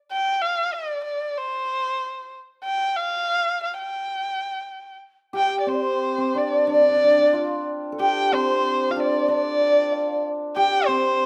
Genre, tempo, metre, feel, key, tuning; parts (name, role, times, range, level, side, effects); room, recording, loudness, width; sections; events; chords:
chinese traditional, Chinese chamber ensemble; 93 BPM; 4/4; rubato; G shang mode; A4 = 440 Hz
dark erhu; melody; 0.1-11.3 s; C5 to G5; -25 LUFS; equal
hammered dulcimer; second line; 5.3-11.3 s; C4 to A4; -25 LUFS; equal
mellow low xiao; second line; 5.3-11.3 s; C5 to G5; -26 LUFS; equal
light reverb; close, detailed microphones; -22 LUFS; mono
0.0-5.3 A section; 5.3-11.3 B section